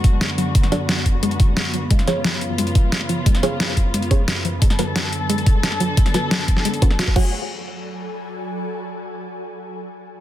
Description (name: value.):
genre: dark technical drum and bass.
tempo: 177 BPM.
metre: 4/4.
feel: straight.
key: F# harmonic minor.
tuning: A4 = 436 Hz.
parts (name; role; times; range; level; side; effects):
dark studio string section; sustained chords; 0.0-7.3 s; F#2 to A4; -26 LUFS; equal; sidechain pumping.
dubstep drum kit; drums; 0.0-7.2 s; crash cymbal, hi-hat, snare drum; -24 LUFS; equal; overdrive.
electronic kick drum; drums; 0.0-7.2 s; none; -16 LUFS; equal; overdrive.
ethereal airy pad; texture; 0.0-8.6 s; F#3 to B5; -33 LUFS; equal; ensemble chorus, built-in reverb, sidechain pumping.
wide unison pluck; arpeggios; 0.2-7.3 s; E#3 to F#4; -26 LUFS; left 2 dB; cassette tape, sidechain pumping, ping-pong delay.
filtered dub chord stab; stabs; 0.7-7.3 s; B3 to F#5; -27 LUFS; right 4 dB; wide subtle chorus, cassette tape, ping-pong delay.
room: light reverb, digital ambience.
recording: dense, heavily limited modern master.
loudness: -17 LUFS.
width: side -13 dB against mid.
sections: 0.0-7.3 A section; 7.3-8.7 B section.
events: none.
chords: 0.0 D6/F#; 1.9 C#7/F#; 4.6 Bm7/F#; 7.2 F#madd9.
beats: 0.21 | 0.55 0.89 1.23 1.57 | 1.91 2.24 2.58 2.92 | 3.26 3.60 3.94 4.28 | 4.62 4.96 5.29 5.63 | 5.97 6.31 6.65 6.99 | 7.33 7.67 8.01 8.35.